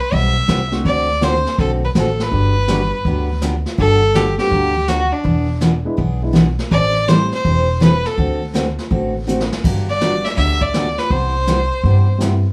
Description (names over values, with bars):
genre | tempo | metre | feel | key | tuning
country, western swing | 164 BPM | 4/4 | swing 66% on 8ths | G major | A4 = 440 Hz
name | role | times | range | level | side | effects
clear fiddle | melody | 0.0-12.2 s | D4 to E5 | -21 LUFS | equal | none
picked steel-string acoustic guitar | accompaniment | 0.1-12.3 s | C3 to A4 | -21 LUFS | equal | none
upright bass | bass | 0.1-12.4 s | E1 to G2 | -21 LUFS | equal | none
jazz brush drum kit | drums | 0.1-12.5 s | brushed snare drum, crash cymbal, hi-hat, kick drum, snare drum | -26 LUFS | equal | none
dark upright piano | accompaniment | 0.7-12.4 s | G3 to G4 | -26 LUFS | equal | none
room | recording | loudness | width
light reverb | studio ambience | -17 LUFS | mono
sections
0.0-3.8 A section; 3.8-12.5 A section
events
drum fill 9.3-9.6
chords
0.0 Cmaj7; 0.9 D7; 2.3 Gmaj7; 5.2 E7; 6.7 Am7; 8.2 D7; 9.6 Gmaj7; 11.1 Cmaj7